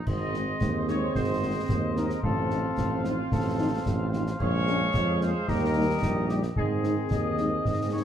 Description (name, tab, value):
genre	military-style march for wind band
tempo	111 BPM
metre	2/4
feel	straight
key	Ab major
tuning	A4 = 440 Hz
part	clear woodwind section	second line	0.0-8.0 s	G4 to F5	-35 LUFS	left 1 dB	none
part	mellow trumpet section	melody	0.1-8.0 s	F4 to Eb5	-32 LUFS	left 2 dB	none
part	dark trombone section	sustained chords	0.1-8.0 s	Eb3 to C4	-33 LUFS	right 2 dB	none
part	warm tuba	bass	0.1-8.0 s	Ab1 to Ab2	-29 LUFS	right 2 dB	none
part	clash cymbals, concert bass drum and concert snare drum	drums	0.1-8.0 s	none	-32 LUFS	equal	none
part	dark French horn section	accompaniment	0.3-8.0 s	F3 to Eb4	-34 LUFS	left 2 dB	none
room	moderate plate reverb, RT60 2.6 s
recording	heard from further back in the room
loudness	-24 LUFS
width	side -9 dB against mid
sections	0.0-8.0 A section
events	none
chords	0.1 Ab; 2.2 F7/A; 4.4 Bbm7; 5.5 Eb; 6.6 Ab